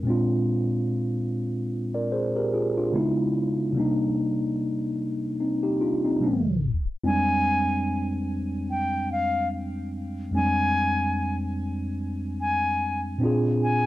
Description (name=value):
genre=hip hop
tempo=73 BPM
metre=4/4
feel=swing 56% on 16ths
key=F dorian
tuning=A4 = 440 Hz
part: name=mellow tine electric piano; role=accompaniment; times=0.0-13.9 s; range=F2 to D5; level=-24 LUFS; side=equal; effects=medium stereo tremolo, cassette tape, low-pass filter
part: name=reedy concert flute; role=melody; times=7.1-13.9 s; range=F5 to Ab5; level=-26 LUFS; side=left 1 dB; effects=low-pass filter
room=wet studio reverb, RT60 0.5 s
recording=dark, warm production, tape stop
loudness=-23 LUFS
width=side -15 dB against mid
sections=0.0-7.1 A section; 7.1-13.9 B section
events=tape stop 6.2-7.1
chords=0.1 Bb7; 2.9 Dbm7; 3.8 Cm7; 6.2 C7; 7.1 Fm69; 13.2 Bb7